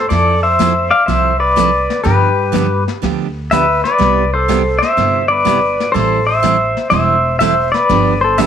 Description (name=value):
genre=country, western swing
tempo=123 BPM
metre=4/4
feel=swing 68% on 8ths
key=C major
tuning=A4 = 441 Hz
part: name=pedal steel guitar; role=melody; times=0.0-8.5 s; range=G4 to F5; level=-13 LUFS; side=left 2 dB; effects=none
part: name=picked steel-string acoustic guitar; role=accompaniment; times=0.1-8.5 s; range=C3 to A4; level=-19 LUFS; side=right 13 dB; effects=none
part: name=upright bass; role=bass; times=0.1-8.5 s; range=E1 to G2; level=-19 LUFS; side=equal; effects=none
part: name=vintage brush drum kit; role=drums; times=0.1-8.5 s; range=brushed snare drum, hi-hat, kick drum, snare drum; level=-24 LUFS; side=left 8 dB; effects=none
room=light reverb, studio ambience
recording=1960s-style stereo with parts hard left and right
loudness=-11 LUFS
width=side -8 dB against mid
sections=0.0-8.5 A section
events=none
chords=0.1 Fmaj7; 2.1 G7; 4.0 Cmaj7; 6.0 Am7; 7.9 G7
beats=| 0.11 0.60 1.09 1.57 | 2.06 2.55 3.03 3.52 | 4.01 4.50 4.98 5.47 | 5.96 6.44 6.93 7.41 | 7.90 8.38